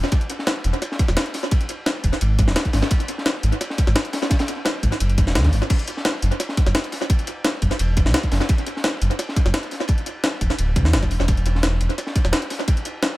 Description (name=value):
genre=liquid drum and bass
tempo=172 BPM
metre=4/4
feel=straight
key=unclear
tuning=A4 = 439 Hz
part: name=sub bass with octave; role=bass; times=0.0-12.3 s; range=D1 to E2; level=-19 LUFS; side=equal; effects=none
part: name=crunchy breakbeat drum kit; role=drums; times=0.0-13.1 s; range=ride cymbal, snare drum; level=-28 LUFS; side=left 1 dB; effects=high-pass filter on cymbals, small room ambience, high-pass filter on snare, high-pass filter on room, analog delay
part: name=jungle sampler-style drum kit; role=drums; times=0.0-13.1 s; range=crash cymbal, hi-hat, snare drum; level=-24 LUFS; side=equal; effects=small room ambience, analog delay
part: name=electronic kick drum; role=drums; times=0.1-12.8 s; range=none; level=-19 LUFS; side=equal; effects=small room ambience
room=light reverb, small room ambience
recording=echo-heavy mix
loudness=-18 LUFS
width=side -18 dB against mid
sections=0.0-13.2 A section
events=none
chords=none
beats=| 0.12 0.47 0.82 1.17 | 1.52 1.86 2.21 2.56 | 2.91 3.26 3.61 3.96 | 4.31 4.66 5.00 5.35 | 5.70 6.05 6.40 6.75 | 7.10 7.45 7.79 8.14 | 8.49 8.84 9.19 9.54 | 9.89 10.24 10.59 10.94 | 11.28 11.63 11.98 12.33 | 12.68 13.03